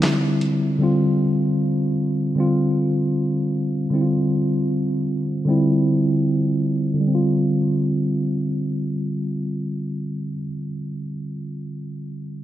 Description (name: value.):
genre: lo-fi hip hop.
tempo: 77 BPM.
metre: 4/4.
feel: swing 58% on 16ths.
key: D minor.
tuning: A4 = 440 Hz.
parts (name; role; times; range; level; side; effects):
mellow tine electric piano; accompaniment; 0.0-12.4 s; D3 to F4; -19 LUFS; equal; medium stereo tremolo, cassette tape, low-pass filter.
dusty soul sampler-style drum kit; drums; 0.0-0.6 s; handclaps, hi-hat, snare drum; -25 LUFS; left 1 dB; none.
room: moderate lush hall reverb, RT60 2.8 s.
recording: rough home demo mix.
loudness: -19 LUFS.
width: side -13 dB against mid.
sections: 0.0-7.0 A section; 7.0-10.2 B section.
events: filter sweep on tine electric piano 0.0-7.0.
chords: 0.0 G5; 0.8 Dm7; 3.9 G5; 7.0 Dm7.